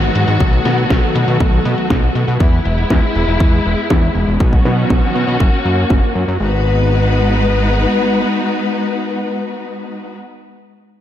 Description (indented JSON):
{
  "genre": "italo disco",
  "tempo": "120 BPM",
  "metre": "4/4",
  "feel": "straight",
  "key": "G# minor",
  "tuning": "A4 = 440 Hz",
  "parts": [
    { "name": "dark symphonic string section", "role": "sustained chords", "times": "0.0-10.1 s", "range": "D#3 to B4", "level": "-17 LUFS", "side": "left 1 dB", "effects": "low-pass filter" },
    { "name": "fat analog bass", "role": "bass", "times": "0.0-7.9 s", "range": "E1 to B2", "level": "-16 LUFS", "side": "equal", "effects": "analog delay" },
    { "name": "house drum kit", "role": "drums", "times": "0.0-6.4 s", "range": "hi-hat, snare drum", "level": "-23 LUFS", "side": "equal", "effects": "low-pass filter on hats, low-pass filter on snare, low-pass filter on room" },
    { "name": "electronic kick drum", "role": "drums", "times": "0.4-6.0 s", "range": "none", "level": "-14 LUFS", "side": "equal", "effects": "none" }
  ],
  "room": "moderate lush hall reverb, RT60 1.8 s",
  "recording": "dreamy mix soaked in reverb",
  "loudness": "-12 LUFS",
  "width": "side -11 dB against mid",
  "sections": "0.0-6.4 A section; 6.4-10.4 B section",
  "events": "filter sweep on drum 0.0-6.4",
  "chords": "0.4 B7; 2.4 E; 4.4 Badd9; 5.4 F#; 6.4 G#m7",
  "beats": "| 0.40 0.90 1.40 1.90 | 2.40 2.90 3.40 3.90 | 4.40 4.90 5.40 5.90 | 6.40 6.90 7.40 7.90 | 8.40 8.90 9.40 9.90"
}